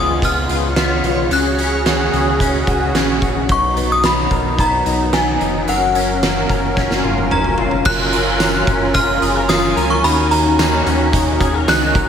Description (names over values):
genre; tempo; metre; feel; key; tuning
dream pop; 110 BPM; 4/4; straight; F# major; A4 = 439 Hz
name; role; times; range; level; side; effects
synth chime; melody; 0.0-12.1 s; F#5 to F#6; -20 LUFS; left 1 dB; ensemble chorus, phaser, ping-pong delay
musette accordion; sustained chords; 0.0-12.1 s; C#3 to A#4; -21 LUFS; right 3 dB; none
electric guitar through a small old amp; arpeggios; 0.0-12.1 s; B2 to A#4; -21 LUFS; left 4 dB; ensemble chorus, ping-pong delay
round analog bass; bass; 0.0-12.1 s; E#1 to D#2; -22 LUFS; equal; none
backwards swelling texture; texture; 0.7-12.1 s; C#5 to G#5; -30 LUFS; right 1 dB; none
oversized low-tuned drum kit; drums; 0.2-12.1 s; crash cymbal, hi-hat, kick drum, snare drum, tambourine, toms; -19 LUFS; right 1 dB; none
room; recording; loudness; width
moderate scoring stage reverb, RT60 2.0 s, small room ambience; none; -13 LUFS; side -8 dB against mid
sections
0.0-7.9 A section; 7.9-12.1 B section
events
drum fill 6.8-7.9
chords
0.0 C#7; 1.3 F#sus2/C#; 3.5 Bmaj7; 5.7 F#maj7; 10.0 D#m7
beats
0.22 0.77 | 1.31 1.86 2.40 2.95 | 3.50 4.04 4.59 5.13 | 5.68 6.22 6.77 7.31 | 7.86 8.40 8.95 9.50 | 10.04 10.59 11.13 11.68